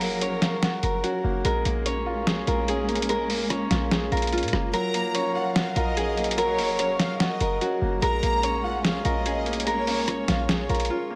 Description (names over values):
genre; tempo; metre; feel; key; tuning
hip hop, trap; 146 BPM; 4/4; half-time; Bb minor; A4 = 440 Hz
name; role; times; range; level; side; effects
Celtic harp; melody; 0.0-11.2 s; F4 to Db5; -30 LUFS; equal; digital delay
warm concert grand piano; accompaniment; 0.0-11.2 s; Gb3 to F5; -32 LUFS; equal; none
warm symphonic string section; sustained chords; 0.0-11.2 s; Gb3 to F5; -36 LUFS; equal; none
short 808-style bass; bass; 0.0-10.9 s; F1 to Bb2; -32 LUFS; equal; none
lo-fi sampler-style drum kit; drums; 0.0-10.9 s; hi-hat, rim click, snare drum; -29 LUFS; equal; overdrive
dark studio violin section; second line; 4.7-11.2 s; Db5 to Bb5; -34 LUFS; equal; digital delay
room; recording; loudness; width
light reverb, studio reverb; none; -25 LUFS; mono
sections
0.0-11.2 A section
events
kick muted 4.7-5.6; break 10.9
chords
0.0 Gbmaj7; 1.4 Bbm7; 4.7 Gbmaj7; 8.0 Bbm7